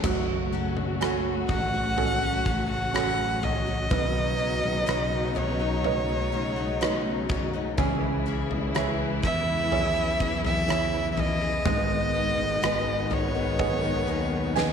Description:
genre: pop ballad.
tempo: 62 BPM.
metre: 4/4.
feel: straight.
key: unclear.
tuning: A4 = 441 Hz.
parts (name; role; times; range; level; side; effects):
clear grand piano; accompaniment; 0.0-14.7 s; F#3 to G#5; -32 LUFS; right 15 dB; none.
warm studio string section; sustained chords; 0.0-14.7 s; B2 to F#4; -32 LUFS; left 1 dB; none.
picked steel-string acoustic guitar; arpeggios; 0.0-14.7 s; F#2 to G#4; -33 LUFS; left 12 dB; none.
fretless electric bass; bass; 0.0-14.7 s; F#1 to E2; -32 LUFS; equal; none.
huge arena drum kit; drums; 0.0-14.7 s; crash cymbal, kick drum, rim click, snare drum, toms; -30 LUFS; left 1 dB; none.
rich violin; melody; 1.5-14.7 s; C#5 to F#5; -28 LUFS; right 1 dB; none.
room: light reverb, small room ambience.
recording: 1960s-style stereo with parts hard left and right.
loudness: -24 LUFS.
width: side -7 dB against mid.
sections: 0.0-14.7 A section.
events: grand piano fill 14.1-14.7; drum fill 14.6.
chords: 0.0 F#m; 3.9 Badd9; 7.8 C#m; 11.7 G#m.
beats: | 0.04 1.01 1.98 2.94 | 3.91 4.88 5.85 6.82 | 7.78 8.75 9.72 10.69 | 11.65 12.62 13.59 14.56.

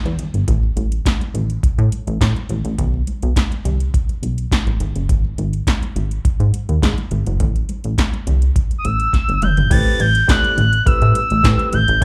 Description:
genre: early-eighties boogie funk.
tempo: 104 BPM.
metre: 4/4.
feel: straight.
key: A dorian.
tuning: A4 = 440 Hz.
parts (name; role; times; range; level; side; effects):
plucky analog bass; bass; 0.1-12.0 s; F#1 to A2; -20 LUFS; equal; none.
electro analog drum machine; drums; 0.1-12.0 s; crash cymbal, handclaps, hi-hat, kick drum, snare drum, toms; -20 LUFS; equal; overdrive.
congas; percussion; 0.1-12.0 s; none; -33 LUFS; equal; none.
expressive portamento lead; melody; 8.8-12.0 s; D#6 to A6; -20 LUFS; equal; chorus, slapback echo.
barky tine electric piano; accompaniment; 9.7-12.0 s; A3 to D5; -28 LUFS; equal; overdrive, slapback echo.
room: little or no reverb.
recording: live gig heard through the venue's PA, club reverb.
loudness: -18 LUFS.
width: mono.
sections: 0.0-9.7 A section; 9.7-12.0 B section.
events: drum fill 9.1-9.7.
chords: 0.5 N.C.; 2.8 Amadd9 (rootless); 4.8 G#5; 7.4 Am7; 9.7 Am9.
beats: | 0.48 1.05 1.63 2.21 | 2.79 3.36 3.94 4.52 | 5.09 5.67 6.25 6.82 | 7.40 7.98 8.55 9.13 | 9.71 10.29 10.86 11.44 | 12.02.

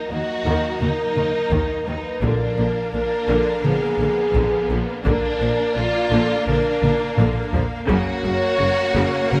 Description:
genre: cinematic, epic orchestral film score.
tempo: 85 BPM.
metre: 4/4.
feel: straight.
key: unclear.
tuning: A4 = 441 Hz.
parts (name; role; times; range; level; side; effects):
warm symphonic violin section; melody; 0.0-9.4 s; Cb4 to Bb4; -30 LUFS; equal; none.
warm studio violin section; second line; 0.0-9.4 s; Bb3; -33 LUFS; equal; none.
mellow French horn section; sustained chords; 0.0-9.4 s; Gb4 to Eb5; -25 LUFS; equal; none.
warm symphonic string section; sustained chords; 0.0-9.4 s; F3 to Bb5; -33 LUFS; equal; none.
dark symphonic viola section; accompaniment; 0.1-9.4 s; Db3 to Gb3; -30 LUFS; equal; none.
warm studio cello section; bass; 0.1-9.4 s; Eb2 to Bb2; -29 LUFS; equal; none.
warm symphonic double bass section; bass; 0.1-9.4 s; Gb1 to Eb2; -29 LUFS; equal; none.
taiko ensemble; drums; 0.8-9.4 s; none; -27 LUFS; equal; none.
timpani; percussion; 2.2-3.3 s; Bb2; -30 LUFS; equal; none.
room: moderate scoring stage reverb, RT60 1.7 s.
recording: close, detailed microphones.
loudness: -20 LUFS.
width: mono.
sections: 0.0-9.4 A section.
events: drum fill 6.8-7.9.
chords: 0.0 Ebm; 2.2 Bb; 7.9 Gb.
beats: 0.11 0.82 1.52 | 2.23 2.94 3.65 4.35 | 5.06 5.77 6.47 7.18 | 7.89 8.60 9.32.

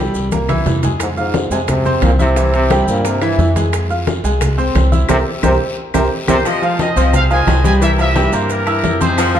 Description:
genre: latin, salsa.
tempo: 176 BPM.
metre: 4/4.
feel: straight.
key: F minor.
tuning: A4 = 440 Hz.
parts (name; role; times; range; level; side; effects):
bright grand piano; accompaniment; 0.0-9.4 s; E3 to F6; -18 LUFS; equal; none.
upright bass; bass; 0.0-9.4 s; C2 to G2; -17 LUFS; equal; none.
congas; percussion; 0.1-9.4 s; none; -21 LUFS; left 2 dB; none.
maracas; percussion; 0.1-9.4 s; none; -34 LUFS; right 7 dB; none.
guiro; percussion; 0.2-9.4 s; none; -33 LUFS; left 5 dB; none.
bongos and cowbell; percussion; 0.3-9.4 s; none; -28 LUFS; left 6 dB; none.
timbales and agogo bells; percussion; 0.3-9.4 s; none; -25 LUFS; right 6 dB; none.
claves; percussion; 0.5-9.3 s; none; -32 LUFS; left 7 dB; none.
warm trombone; melody; 1.0-6.4 s; Ab2 to E3; -19 LUFS; equal; none.
bright trumpet section; melody; 6.3-9.4 s; Eb4 to Ab5; -18 LUFS; equal; none.
clear saxophone section; second line; 6.5-9.4 s; Eb3 to F3; -21 LUFS; left 3 dB; none.
room: wet large studio reverb, RT60 1.4 s.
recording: dark, warm production.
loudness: -12 LUFS.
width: side -10 dB against mid.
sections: 0.0-6.5 A section; 6.5-9.4 B section.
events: drum fill 0.3-1.0, 5.8-6.5; band accent 5.1-6.5.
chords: 0.0 C7; 1.0 Fm; 2.4 C7; 3.7 Fm; 5.1 C5; 6.5 Fm7; 7.8 C7.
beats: 0.32 0.66 | 1.00 1.34 1.68 2.02 | 2.37 2.71 3.05 3.39 | 3.73 4.07 4.41 4.75 | 5.09 5.43 5.78 6.12 | 6.46 6.80 7.14 7.48 | 7.82 8.16 8.50 8.84 | 9.18.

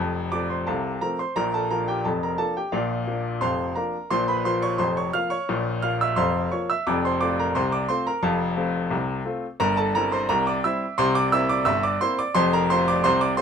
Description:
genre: ragtime piano.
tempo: 87 BPM.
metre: 2/4.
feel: straight.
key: F major.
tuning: A4 = 440 Hz.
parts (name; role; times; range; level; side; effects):
clear baby grand piano; solo; 0.0-13.4 s; F1 to F6; -21 LUFS; equal; none.
room: light reverb.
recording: minimal, uncompressed stereo recording.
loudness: -21 LUFS.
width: side -7 dB against mid.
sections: 0.0-13.4 A section.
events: none.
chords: 0.0 F; 4.1 Bbm; 6.9 F; 9.6 C7/G; 11.0 C7; 12.4 F.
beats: 0.67 | 1.35 2.04 | 2.73 3.42 | 4.11 4.80 | 5.49 6.17 | 6.86 7.55 | 8.23 8.92 | 9.61 10.29 | 10.98 11.67 | 12.35 13.04.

